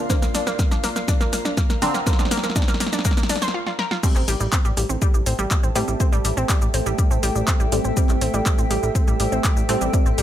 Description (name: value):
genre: melodic techno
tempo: 122 BPM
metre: 4/4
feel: straight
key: A phrygian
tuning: A4 = 439 Hz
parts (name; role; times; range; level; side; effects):
- dark analog pad; sustained chords; 0.0-10.2 s; A3 to G5; -31 LUFS; right 1 dB; chorus, sidechain pumping
- analog pluck; arpeggios; 0.0-10.2 s; G3 to C5; -26 LUFS; equal; chorus, sidechain pumping, tape echo
- filtered dub chord stab; stabs; 0.0-10.2 s; D3 to C4; -28 LUFS; right 2 dB; phaser, analog chorus, sidechain pumping, tape echo
- granular cloud pad; texture; 0.0-10.2 s; A4 to C6; -32 LUFS; right 1 dB; built-in reverb, sidechain pumping
- electronic kick drum; drums; 0.1-10.0 s; none; -20 LUFS; equal; studio reverb
- punchy analog drum machine; drums; 0.1-10.2 s; crash cymbal, handclaps, hi-hat, shaker, snare drum; -25 LUFS; equal; overdrive, studio reverb
- plucky analog bass; bass; 4.2-10.2 s; A1 to A2; -24 LUFS; equal; sidechain pumping
room: light reverb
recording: none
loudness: -18 LUFS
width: side -11 dB against mid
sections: 0.0-4.0 A section; 4.0-10.2 B section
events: build-up 0.0-4.0; drum fill 0.0-3.5, 3.7-4.0; filter sweep on synth stab 0.0-4.0; break 3.5-4.0; drop 4.0-10.2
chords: 0.0 Bbadd9; 4.0 Am7